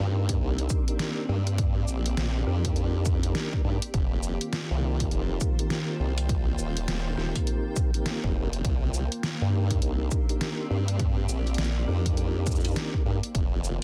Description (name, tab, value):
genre	glitch hop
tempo	102 BPM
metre	4/4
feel	swing 61% on 16ths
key	C minor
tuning	A4 = 441 Hz
part	warbly tape-like pad	sustained chords	0.0-13.8 s	Eb3 to F4	-40 LUFS	equal	chorus, built-in reverb, sidechain pumping
part	formant-sweep wobble bass	bass	0.0-13.8 s	Eb1 to G2	-29 LUFS	equal	chorus
part	granular cloud pad	texture	0.0-13.8 s	C4 to G5	-42 LUFS	equal	built-in reverb, sidechain pumping
part	mellow tonewheel organ	stabs	0.1-13.2 s	C4 to Bb4	-38 LUFS	equal	chorus vibrato, stopped rotary speaker, sidechain pumping, delay
part	dubstep drum kit	drums	0.3-13.8 s	hi-hat, rim click, shaker, snare drum	-35 LUFS	equal	none
part	electronic kick drum	drums	0.3-13.5 s	none	-30 LUFS	equal	none
room	little or no reverb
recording	dense, heavily limited modern master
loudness	-27 LUFS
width	mono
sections	0.0-13.8 A section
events	none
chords	0.0 Cm9; 3.9 F7sus4; 8.6 Cm9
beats	0.41 1.00 | 1.59 2.18 2.76 3.35 | 3.94 4.53 5.12 5.71 | 6.29 6.88 7.47 8.06 | 8.65 9.23 9.82 10.41 | 11.00 11.59 12.18 12.76 | 13.35